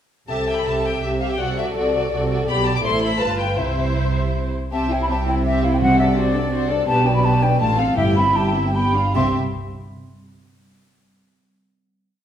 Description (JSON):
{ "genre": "quick classical-period movement for symphony orchestra", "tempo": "145-171 BPM", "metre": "3/4", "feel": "rubato", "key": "C major", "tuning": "A4 = 441 Hz", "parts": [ { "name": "warm chamber violin section", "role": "melody", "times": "0.3-9.4 s", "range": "B4 to D6", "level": "-26 LUFS", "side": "left 5 dB", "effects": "none" }, { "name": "warm chamber violin section", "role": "second line", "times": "0.3-9.4 s", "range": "E4 to E5", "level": "-27 LUFS", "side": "equal", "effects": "none" }, { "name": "dark symphonic viola section", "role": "accompaniment", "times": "0.3-9.4 s", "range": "A3 to C5", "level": "-25 LUFS", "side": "equal", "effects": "none" }, { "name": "dark chamber cello section", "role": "bass", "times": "0.3-9.4 s", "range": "G2 to C3", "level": "-25 LUFS", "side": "right 2 dB", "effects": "none" }, { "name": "dark chamber double bass section", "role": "bass", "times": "0.3-9.4 s", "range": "G1 to C2", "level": "-24 LUFS", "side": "right 1 dB", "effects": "none" }, { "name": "mellow concert flute", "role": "second line", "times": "4.7-9.4 s", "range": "D5 to C6", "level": "-21 LUFS", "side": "equal", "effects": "none" }, { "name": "timpani", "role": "percussion", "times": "5.8-9.3 s", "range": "G2 to C3", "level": "-26 LUFS", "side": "left 1 dB", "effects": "none" } ], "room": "wet recital hall reverb, RT60 1.3 s", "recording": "recorded in a church or concert hall", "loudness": "-17 LUFS", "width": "side -9 dB against mid", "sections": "0.3-4.7 A section; 4.7-9.1 A section; 9.1-10.3 final chord", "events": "none", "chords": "0.3 C; 1.4 D7/C; 2.5 G/B; 2.8 Am; 3.2 G7; 3.6 C; 5.8 D7/C; 6.9 G/B; 7.6 F/A; 8.0 C/G; 8.7 G7; 9.1 N.C." }